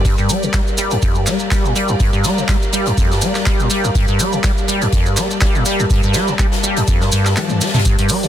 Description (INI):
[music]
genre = acid house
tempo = 123 BPM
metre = 4/4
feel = swing 54% on 16ths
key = unclear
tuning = A4 = 441 Hz
[part]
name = dark analog pad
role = sustained chords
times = 0.0-8.3 s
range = G3 to F5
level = -23 LUFS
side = left 2 dB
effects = chorus, sidechain pumping
[part]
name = liquid acid bass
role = riff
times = 0.0-8.3 s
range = F2 to G3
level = -18 LUFS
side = equal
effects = tube saturation, wide subtle chorus, tape echo
[part]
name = electronic kick drum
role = drums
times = 0.0-8.0 s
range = none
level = -17 LUFS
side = equal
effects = none
[part]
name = rich studio string section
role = texture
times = 0.0-8.3 s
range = G4 to D6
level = -29 LUFS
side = equal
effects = sidechain pumping
[part]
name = huge arena drum kit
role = drums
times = 0.1-8.2 s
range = hi-hat, snare drum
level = -26 LUFS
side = left 2 dB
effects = sidechain pumping on hats, high-pass filter on hats, high-pass filter on snare, high-pass filter on room
[part]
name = maracas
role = percussion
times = 0.1-8.3 s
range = none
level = -23 LUFS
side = right 2 dB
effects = none
[part]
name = punchy analog drum machine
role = drums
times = 0.5-8.2 s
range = handclaps, hi-hat, toms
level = -24 LUFS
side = equal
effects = overdrive
[sound]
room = light reverb, small room ambience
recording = dense, heavily limited modern master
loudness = -13 LUFS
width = side -11 dB against mid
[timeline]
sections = 0.0-8.3 A section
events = kick drops out 7.4-7.9; drum fill 7.4-7.9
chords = 0.0 Gm